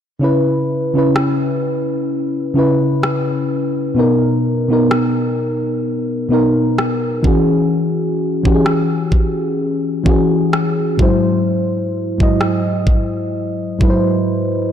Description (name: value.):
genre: contemporary R&B.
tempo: 64 BPM.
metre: 4/4.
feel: swing 58% on 16ths.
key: unclear.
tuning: A4 = 439 Hz.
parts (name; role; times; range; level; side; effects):
mellow FM electric piano; accompaniment; 0.2-14.7 s; G#2 to D#5; -15 LUFS; left 1 dB; chorus.
trap drum kit; drums; 1.2-14.1 s; kick drum, rim click; -18 LUFS; equal; soft clipping on snare.
room: light reverb, digital ambience.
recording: blown-out, overdriven recording, overdrive.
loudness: -14 LUFS.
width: side -9 dB against mid.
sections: 0.2-14.7 A section.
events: break 14.3-14.7.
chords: 0.2 C#m7; 4.0 Bmaj7; 7.2 E69; 11.0 G#7b13.